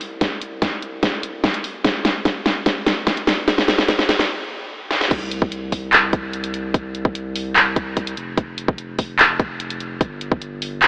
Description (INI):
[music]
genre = future bass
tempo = 147 BPM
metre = 4/4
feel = half-time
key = unclear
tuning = A4 = 440 Hz
[part]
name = saturated sub bass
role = bass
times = 0.0-10.9 s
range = F1 to C2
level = -31 LUFS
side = equal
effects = sidechain pumping, high-pass filter
[part]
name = dubstep drum kit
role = drums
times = 0.0-10.9 s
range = crash cymbal, handclaps, hi-hat, snare drum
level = -17 LUFS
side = equal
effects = none
[part]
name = electronic kick drum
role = drums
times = 0.2-10.4 s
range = none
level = -19 LUFS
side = equal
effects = none
[sound]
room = moderate huge ambient reverb, RT60 5.1 s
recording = high-pass filter, AM radio sound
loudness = -18 LUFS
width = side -26 dB against mid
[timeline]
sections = 0.0-5.1 A section; 5.1-10.9 B section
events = build-up 0.0-5.1; drum fill 0.0-4.3, 4.9; stop 4.3-5.1; drop 5.1-10.9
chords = none